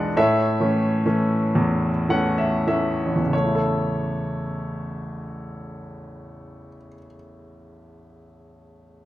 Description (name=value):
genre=classical, lyrical solo piano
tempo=30-49 BPM (dotted quarters)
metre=6/8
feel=rubato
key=A major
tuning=A4 = 440 Hz
part: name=clear baby grand piano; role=solo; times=0.0-9.1 s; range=A1 to F#5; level=-21 LUFS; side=equal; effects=none
room=moderate recital hall reverb, RT60 1.6 s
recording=minimal, uncompressed stereo recording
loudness=-20 LUFS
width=side -15 dB against mid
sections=0.0-3.3 A section; 3.3-7.1 B section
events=slowing down 0.0-3.3; grand piano fill 1.6-3.3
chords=0.2 A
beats=| 0.17 1.56 | 3.33 5.26